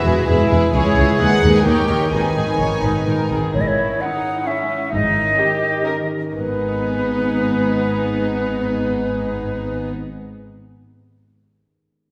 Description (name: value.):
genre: cinematic, playful, whimsical film cue.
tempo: 129 BPM.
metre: 3/4.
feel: straight.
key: G# minor.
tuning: A4 = 442 Hz.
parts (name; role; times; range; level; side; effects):
clear studio violin section; melody; 0.0-9.9 s; G4 to G#5; -31 LUFS; equal; none.
clear studio violin section; second line; 0.0-9.9 s; C#4 to C#5; -30 LUFS; equal; none.
warm studio viola section; accompaniment; 0.0-9.9 s; D#3 to A#4; -25 LUFS; equal; none.
concert harp; arpeggios; 0.0-10.5 s; G#2 to E5; -27 LUFS; equal; none.
dark studio double bass section; bass; 0.0-9.9 s; G#1 to E2; -26 LUFS; equal; none.
dark tuba; bass; 0.0-3.4 s; E1 to D#2; -27 LUFS; equal; none.
warm studio cello section; bass; 0.0-9.9 s; G#2 to G#4; -26 LUFS; equal; none.
silver concert flute; second line; 3.5-9.9 s; B4 to F#5; -23 LUFS; equal; none.
room: wet scoring stage reverb, RT60 1.7 s.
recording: heard from further back in the room.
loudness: -19 LUFS.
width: mono.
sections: 0.0-3.5 A section; 3.5-6.3 B section; 6.3-9.1 C section.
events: none.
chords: 0.0 E; 0.7 C#m; 1.2 G#m/D#; 1.7 D#7; 2.1 G#m; 3.5 C#m/G#; 4.9 D#7/G#; 6.3 G#m.